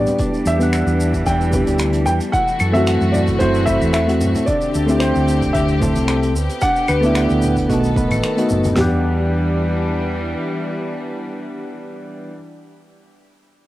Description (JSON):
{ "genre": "sunset chillout", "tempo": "112 BPM", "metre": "4/4", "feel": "swing 53% on 16ths", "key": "E minor", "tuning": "A4 = 441 Hz", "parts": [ { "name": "dark grand piano", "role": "melody", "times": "0.0-12.3 s", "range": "G4 to G5", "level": "-23 LUFS", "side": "equal", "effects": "cassette tape, tape echo, shimmer reverb" }, { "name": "soft electric-piano-like synth keys", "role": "accompaniment", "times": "0.0-12.4 s", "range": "G3 to B5", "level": "-20 LUFS", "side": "equal", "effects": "chorus, auto-pan, cassette tape, tape echo, shimmer reverb" }, { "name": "warm chamber string section", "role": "sustained chords", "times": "0.0-12.3 s", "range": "D3 to A4", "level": "-24 LUFS", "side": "left 1 dB", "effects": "cassette tape, shimmer reverb" }, { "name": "concert harp", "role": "arpeggios", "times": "0.0-11.6 s", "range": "D4 to G5", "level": "-29 LUFS", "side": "left 1 dB", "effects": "cassette tape, tape echo, shimmer reverb" }, { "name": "hollow-body short-scale fingered electric bass", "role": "bass", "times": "0.0-10.3 s", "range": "F#1 to F#2", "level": "-20 LUFS", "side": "equal", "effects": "tube saturation" }, { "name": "soft brush drum kit", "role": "drums", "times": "0.1-8.7 s", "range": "claves, finger snaps, hi-hat, shaker", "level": "-28 LUFS", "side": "equal", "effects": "cassette tape" }, { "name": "congas", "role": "percussion", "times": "0.1-8.7 s", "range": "none", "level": "-28 LUFS", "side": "left 1 dB", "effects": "none" }, { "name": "deep house drum kit", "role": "drums", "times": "0.2-8.9 s", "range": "hi-hat, kick drum, snare drum, toms", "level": "-24 LUFS", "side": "equal", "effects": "cassette tape" } ], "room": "moderate small room reverb, RT60 0.5 s", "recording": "home recording on cassette", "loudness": "-15 LUFS", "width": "side -15 dB against mid", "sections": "0.0-8.8 A section; 8.8-13.1 B section", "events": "none", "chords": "0.2 Em7; 2.3 F#m7b5; 4.5 D7sus4; 6.4 Gmaj7/D; 7.7 B7; 8.8 Em7" }